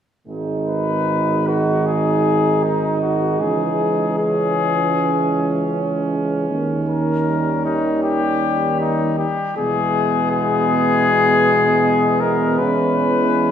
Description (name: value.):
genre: classical, brass quintet.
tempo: 78 BPM.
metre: 4/4.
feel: rubato.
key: G# minor.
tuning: A4 = 445 Hz.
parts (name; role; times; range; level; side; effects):
mellow flugelhorn; second line; 0.3-13.5 s; B3 to D#4; -24 LUFS; right 4 dB; none.
mellow French horn; accompaniment; 0.3-13.5 s; G3 to G#3; -24 LUFS; left 2 dB; none.
mellow trombone; accompaniment; 0.3-13.5 s; B2 to E3; -24 LUFS; right 2 dB; none.
clear tuba; bass; 0.3-13.5 s; G#1 to E2; -23 LUFS; right 3 dB; none.
mellow cornet; melody; 0.7-13.5 s; D#4 to B4; -20 LUFS; left 6 dB; none.
room: wet recital hall reverb, RT60 1.6 s.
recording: recorded in a church or concert hall.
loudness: -16 LUFS.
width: side -9 dB against mid.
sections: 0.3-13.5 A section.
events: none.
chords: 0.3 G#m; 3.4 C#m; 6.5 D#7; 9.6 E; 12.6 C#m7/E.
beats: | 0.27 1.07 1.86 2.63 | 3.40 4.18 4.96 5.72 | 6.50 7.27 8.03 8.80 | 9.56 10.32 11.07 11.83 | 12.59 13.35.